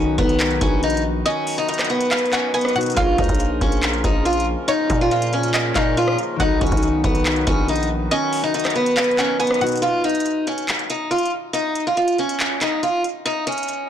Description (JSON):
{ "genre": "hip hop, trap", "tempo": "140 BPM", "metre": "4/4", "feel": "half-time", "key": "unclear", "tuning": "A4 = 441 Hz", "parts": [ { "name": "picked acoustic archtop guitar", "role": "melody", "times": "0.0-13.9 s", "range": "B3 to F4", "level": "-20 LUFS", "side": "equal", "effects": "low-pass filter" }, { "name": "string-like resonator pluck", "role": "second line", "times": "0.0-9.8 s", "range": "Db5 to Ab5", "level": "-27 LUFS", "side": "right 1 dB", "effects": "chorus, tape echo" }, { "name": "concert harp", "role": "accompaniment", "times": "0.0-9.9 s", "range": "B2 to F5", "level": "-28 LUFS", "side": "left 5 dB", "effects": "low-pass filter" }, { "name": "hand-pumped harmonium", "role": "sustained chords", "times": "0.0-9.8 s", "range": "Db3 to B3", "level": "-30 LUFS", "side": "equal", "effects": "stereo widening" }, { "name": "growling 808-style bass", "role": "bass", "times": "0.0-8.1 s", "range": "Bb1 to Bb2", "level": "-23 LUFS", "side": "equal", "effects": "none" }, { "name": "booming analog drum machine", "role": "drums", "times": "0.2-13.8 s", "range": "handclaps, hi-hat, kick drum, rim click", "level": "-23 LUFS", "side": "equal", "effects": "none" } ], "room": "light reverb", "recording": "blown-out, overdriven recording, overdrive", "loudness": "-17 LUFS", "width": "side -9 dB against mid", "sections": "0.0-9.8 A section; 9.8-13.9 B section", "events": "kick muted 1.3-3.0, 8.1-9.8; break 9.8-13.9", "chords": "0.0 B; 3.0 Bbm; 6.4 B; 9.8 N.C.", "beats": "0.40 0.83 | 1.26 1.68 2.11 2.54 | 2.97 3.40 3.83 4.26 | 4.68 5.11 5.54 5.97 | 6.40 6.83 7.26 7.68 | 8.11 8.54 8.97 9.40 | 9.83 10.26 10.68 11.11 | 11.54 11.97 12.40 12.83 | 13.26 13.68" }